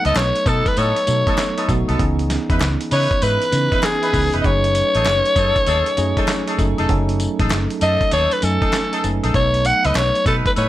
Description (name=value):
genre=R&B, new jack swing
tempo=98 BPM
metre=4/4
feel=swing 64% on 16ths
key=F# dorian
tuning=A4 = 442 Hz
part: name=raspy alto saxophone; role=melody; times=0.0-10.7 s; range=G#4 to F#5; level=-19 LUFS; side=left 1 dB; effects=none
part: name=bell-like tine electric piano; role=accompaniment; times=0.0-10.7 s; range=E3 to G#5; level=-24 LUFS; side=right 3 dB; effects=medium stereo tremolo
part: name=warm horn section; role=stabs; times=0.0-10.7 s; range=B3 to B4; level=-26 LUFS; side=left 1 dB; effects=none
part: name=dusty soul sampler-style drum kit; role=drums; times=0.0-10.7 s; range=handclaps, hi-hat, kick drum, snare drum, tambourine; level=-22 LUFS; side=equal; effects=none
part: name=vintage muted fingered electric bass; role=bass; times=0.1-10.7 s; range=E#1 to C#3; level=-21 LUFS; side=equal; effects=none
part: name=group handclap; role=percussion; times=0.2-10.1 s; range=none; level=-36 LUFS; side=left 8 dB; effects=none
room=small room ambience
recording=none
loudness=-15 LUFS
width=side -14 dB against mid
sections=0.0-10.7 A section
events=none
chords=0.0 B7; 2.0 C#m9; 4.4 F#m69; 9.3 B7